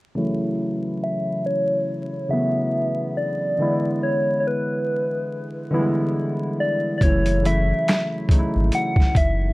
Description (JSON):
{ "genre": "lo-fi hip hop", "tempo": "70 BPM", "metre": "4/4", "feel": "swing 57% on 16ths", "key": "F# minor", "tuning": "A4 = 440 Hz", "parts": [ { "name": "soft electric-piano-like synth keys", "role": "accompaniment", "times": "0.1-9.5 s", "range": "C#3 to E4", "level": "-24 LUFS", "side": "equal", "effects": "chorus, cassette tape, low-pass filter" }, { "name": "soft struck synth lead", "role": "melody", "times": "1.0-9.5 s", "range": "B4 to F#5", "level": "-24 LUFS", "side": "equal", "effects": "chorus, low-pass filter" }, { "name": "warm sub bass", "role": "bass", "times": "7.0-9.5 s", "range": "F#1 to G#1", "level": "-22 LUFS", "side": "equal", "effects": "none" }, { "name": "boom bap sampler-style drum kit", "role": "drums", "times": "7.0-9.4 s", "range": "handclaps, hi-hat, kick drum, snare drum", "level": "-18 LUFS", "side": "equal", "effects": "none" } ], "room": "light reverb", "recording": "vinyl crackle", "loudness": "-19 LUFS", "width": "side -20 dB against mid", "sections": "0.2-7.0 A section; 7.0-9.5 B section", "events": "filter sweep 0.2-7.0", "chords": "0.2 F#m7; 3.6 E7; 7.0 F#m7" }